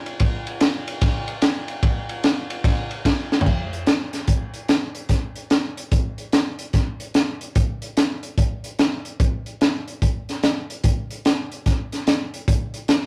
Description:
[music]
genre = blues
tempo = 146 BPM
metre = 4/4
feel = swing 64% on 8ths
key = none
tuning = none
[part]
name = crunchy breakbeat drum kit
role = drums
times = 0.1-13.0 s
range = crash cymbal, hi-hat, kick drum, ride cymbal, snare drum, toms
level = -22 LUFS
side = equal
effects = none
[sound]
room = light reverb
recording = rough rehearsal-room recording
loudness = -22 LUFS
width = mono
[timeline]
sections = 0.0-3.5 A section; 3.5-13.1 B section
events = drum fill 3.3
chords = none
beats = | 0.21 0.62 1.02 1.43 | 1.84 2.25 2.65 3.06 | 3.47 3.88 4.29 4.70 | 5.11 5.51 5.92 6.33 | 6.74 7.15 7.56 7.97 | 8.38 8.79 9.21 9.62 | 10.03 10.44 10.85 11.26 | 11.67 12.08 12.49 12.90

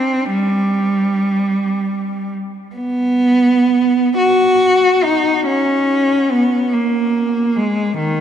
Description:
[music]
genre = classical, free, expressive piece for unaccompanied cello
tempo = 38-52 BPM (dotted quarters)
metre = 6/8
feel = rubato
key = Eb minor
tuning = A4 = 440 Hz
[part]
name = rich cello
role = solo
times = 0.0-8.2 s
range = Eb3 to Gb4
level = -14 LUFS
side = equal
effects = none
[sound]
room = wet cathedral reverb, RT60 5.0 s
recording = none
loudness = -13 LUFS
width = side -9 dB against mid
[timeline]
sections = 0.0-8.2 A section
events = none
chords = none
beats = | 0.31 1.57 | 2.75 4.17 | 5.47 6.73 | 7.98

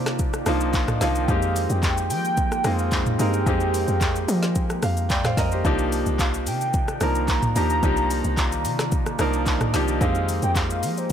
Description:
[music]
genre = amapiano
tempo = 110 BPM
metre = 4/4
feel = straight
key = C minor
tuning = A4 = 440 Hz
[part]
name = warm velvety synth lead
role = melody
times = 0.0-11.1 s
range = C5 to Bb5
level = -29 LUFS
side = equal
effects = chorus, tape echo
[part]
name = bright concert grand piano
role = accompaniment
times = 0.0-11.1 s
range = F3 to Bb5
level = -26 LUFS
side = equal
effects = none
[part]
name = deep dark ambient pad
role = sustained chords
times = 0.0-11.1 s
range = Eb3 to D5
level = -32 LUFS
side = right 1 dB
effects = chorus, built-in reverb, phaser, sidechain pumping
[part]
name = deep log drum bass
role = bass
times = 0.0-11.1 s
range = C2 to F3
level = -26 LUFS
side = equal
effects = none
[part]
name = afro-pop drum kit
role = drums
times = 0.1-11.1 s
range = handclaps, hi-hat, kick drum, rim click, shaker, snare drum, toms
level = -25 LUFS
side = equal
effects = none
[sound]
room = little or no reverb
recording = dry, gritty hardware recording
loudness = -20 LUFS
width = side -9 dB against mid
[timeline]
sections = 0.0-11.1 A section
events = grand piano fill 4.6-5.6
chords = 0.0 Cm11; 1.3 Fm11; 5.6 Cm11; 10.0 Fm11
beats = 0.19 0.74 | 1.28 1.83 2.38 2.92 | 3.47 4.01 4.56 5.10 | 5.65 6.19 6.74 7.28 | 7.83 8.38 8.92 9.47 | 10.01 10.56 11.10

